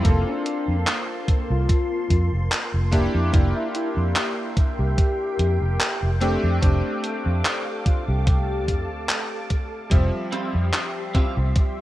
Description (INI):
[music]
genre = vaporwave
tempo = 73 BPM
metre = 4/4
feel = swing 54% on 16ths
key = F major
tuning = A4 = 441 Hz
[part]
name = bright electric grand piano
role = accompaniment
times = 0.0-11.8 s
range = F3 to E5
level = -28 LUFS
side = equal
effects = analog chorus, tape echo
[part]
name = soft string machine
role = sustained chords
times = 0.0-11.8 s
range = Bb3 to D6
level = -34 LUFS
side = equal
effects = phaser, ensemble chorus
[part]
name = vintage muted fingered electric bass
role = bass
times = 0.0-11.5 s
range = F1 to F2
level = -22 LUFS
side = equal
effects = none
[part]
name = electronic kick drum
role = drums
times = 0.0-11.7 s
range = none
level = -20 LUFS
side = equal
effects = none
[part]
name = gated 80s digital drum machine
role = drums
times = 0.0-11.7 s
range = handclaps, hi-hat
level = -26 LUFS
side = equal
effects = gated reverb
[part]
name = warm velvety synth lead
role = melody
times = 0.3-8.9 s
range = D4 to G4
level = -31 LUFS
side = left 2 dB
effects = chorus, tape echo
[part]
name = clean electric guitar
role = riff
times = 10.3-11.4 s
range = C4 to G4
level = -30 LUFS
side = right 2 dB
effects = ensemble chorus, tape echo
[sound]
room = light reverb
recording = rough home demo mix, cassette tape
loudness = -20 LUFS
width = side -15 dB against mid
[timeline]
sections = 0.0-11.8 A section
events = none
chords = 0.1 Fadd11; 2.9 C7/F; 6.2 F69; 9.9 Cadd11/F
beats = | 0.05 0.87 1.69 2.52 | 3.34 4.16 4.98 5.80 | 6.62 7.45 8.27 9.09 | 9.91 10.73 11.56